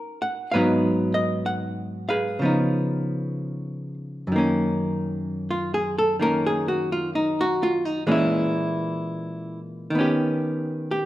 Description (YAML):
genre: jazz ballad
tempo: 64 BPM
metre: 4/4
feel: swing 66% on 8ths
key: F# major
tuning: A4 = 440 Hz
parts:
  - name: archtop guitar, miked and amplified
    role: solo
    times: 0.0-11.1 s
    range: F#2 to F#5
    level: -22 LUFS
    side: equal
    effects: none
room: wet large studio reverb, RT60 1.3 s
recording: dark, warm production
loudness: -22 LUFS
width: side -15 dB against mid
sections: 0.0-4.3 A section; 4.3-11.1 B section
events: none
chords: 0.0 F#6; 0.5 G#m7; 2.4 C#9; 4.3 F#6; 8.1 A#m7b5; 9.9 D#7b13